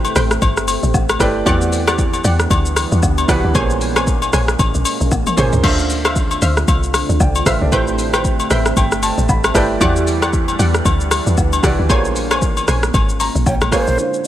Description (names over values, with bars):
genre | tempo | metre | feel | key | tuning
amapiano | 115 BPM | 4/4 | swing 58% on 16ths | unclear | A4 = 441 Hz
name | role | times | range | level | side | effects
warm baby grand piano | accompaniment | 0.0-14.3 s | Bb2 to B5 | -22 LUFS | right 3 dB | low-pass filter
deep dark ambient pad | sustained chords | 0.0-14.3 s | D3 to F#5 | -24 LUFS | equal | chorus, built-in reverb, low-pass filter
woody log drum bass | bass | 0.0-14.0 s | G1 to E2 | -18 LUFS | equal | none
agogo bells and woodblock | percussion | 0.0-13.7 s | none | -23 LUFS | left 5 dB | none
deep house drum kit | drums | 0.1-14.3 s | crash cymbal, hi-hat, kick drum, rim click, shaker, toms | -18 LUFS | equal | none
punchy chord stab | stabs | 0.2-13.9 s | G4 to Ab5 | -24 LUFS | left 1 dB | chorus, digital delay
breathy mellow concert flute | melody | 13.5-14.3 s | C5 to Db5 | -20 LUFS | right 1 dB | low-pass filter
room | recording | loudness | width
light reverb | none | -13 LUFS | side -12 dB against mid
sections
0.0-14.0 A section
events
drop 0.0-14.0; drum fill 5.1-5.6; grand piano fill 8.2-9.8, 12.9-14.0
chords
0.0 Am9; 1.5 Em9; 3.5 Bbm9; 5.6 Dm9; 7.7 Am9; 9.8 Em9; 11.9 Bbm9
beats
0.42 0.94 | 1.46 1.98 2.51 3.03 | 3.55 4.07 4.59 5.12 | 5.64 6.16 6.68 7.20 | 7.72 8.24 8.77 9.29 | 9.81 10.33 10.85 11.38 | 11.90 12.42 12.94 13.46 | 13.98